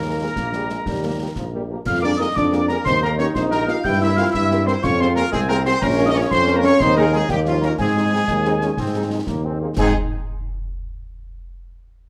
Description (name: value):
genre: military-style march for wind band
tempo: 121 BPM (dotted quarters)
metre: 6/8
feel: straight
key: Ab major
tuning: A4 = 440 Hz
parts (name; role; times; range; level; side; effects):
- mellow trumpet section; melody; 0.0-9.9 s; F4 to G5; -28 LUFS; equal; none
- mellow euphonium; second line; 0.0-9.9 s; F3 to G4; -26 LUFS; equal; none
- wooden piccolo; second line; 0.0-10.0 s; F5 to G6; -27 LUFS; equal; none
- warm French horn section; accompaniment; 0.0-9.9 s; Ab3 to Bb4; -30 LUFS; equal; none
- bright trombone section; sustained chords; 0.0-9.9 s; Eb3 to F4; -28 LUFS; equal; none
- warm tuba; bass; 0.0-9.9 s; Bb1 to Ab2; -24 LUFS; equal; none
- concert snare drum, concert bass drum and clash cymbals; drums; 0.4-10.0 s; none; -31 LUFS; equal; none
room: moderate large studio reverb, RT60 1.2 s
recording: dark, warm production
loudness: -19 LUFS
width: mono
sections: 0.0-9.8 A section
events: none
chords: 0.0 Ebsus4; 0.9 Eb; 1.9 Bb7/F; 2.8 Eb; 3.8 C7/G; 4.8 Fm; 5.8 Bbm; 6.8 Ab/Eb; 7.3 Ebsus2; 7.8 Ab